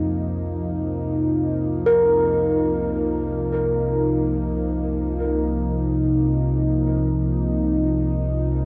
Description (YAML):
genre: dark ambient drone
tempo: free time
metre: none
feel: none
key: C minor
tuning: A4 = 441 Hz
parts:
  - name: sweeping resonant pad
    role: sustained chords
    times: 0.0-8.7 s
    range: C3 to Eb4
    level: -25 LUFS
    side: equal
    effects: chorus, phaser
  - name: gamelan-type bossed gongs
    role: arpeggios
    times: 0.0-8.5 s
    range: F2 to Bb4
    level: -26 LUFS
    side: equal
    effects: diffuse ambient delay
  - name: deep rumbling drone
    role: drone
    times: 0.1-8.7 s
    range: C2 to C3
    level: -28 LUFS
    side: equal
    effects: built-in reverb
room: wet huge ambient reverb, RT60 7.5 s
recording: worn, warbling old tape, cassette tape, warbly pitch drift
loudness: -22 LUFS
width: mono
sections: 0.0-8.7 A section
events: fade-in on synth drone 0.0-8.7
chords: 0.0 Cm